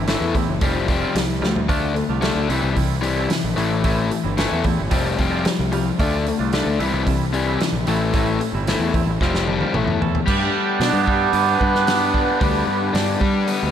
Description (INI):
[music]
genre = indie rock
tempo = 112 BPM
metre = 4/4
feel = straight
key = unclear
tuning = A4 = 441 Hz
[part]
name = overdriven electric guitar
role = riff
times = 0.0-13.7 s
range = A2 to B4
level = -21 LUFS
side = left 6 dB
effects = none
[part]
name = twangy electric guitar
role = riff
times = 0.0-13.7 s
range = G3 to A4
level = -25 LUFS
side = right 7 dB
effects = wide subtle chorus, ping-pong delay
[part]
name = fuzz picked electric bass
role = bass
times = 0.0-13.7 s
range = F1 to G3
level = -23 LUFS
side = right 1 dB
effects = overdrive
[part]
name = loose indie drum kit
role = drums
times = 0.1-13.6 s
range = crash cymbal, hi-hat, kick drum, snare drum, toms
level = -24 LUFS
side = right 1 dB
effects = none
[sound]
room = moderate huge ambient reverb, RT60 9.0 s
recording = dreamy mix soaked in reverb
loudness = -17 LUFS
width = side -9 dB against mid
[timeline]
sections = 0.0-10.3 A section; 10.3-13.7 B section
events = drum fill 1.4, 9.2-10.3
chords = 0.0 Am7; 0.6 Fsus2; 1.7 Dm; 2.5 C; 3.6 Am7; 4.9 Fsus2; 6.0 Dm; 6.8 C; 7.9 Am7; 9.2 Fsus2; 9.7 A; 10.3 G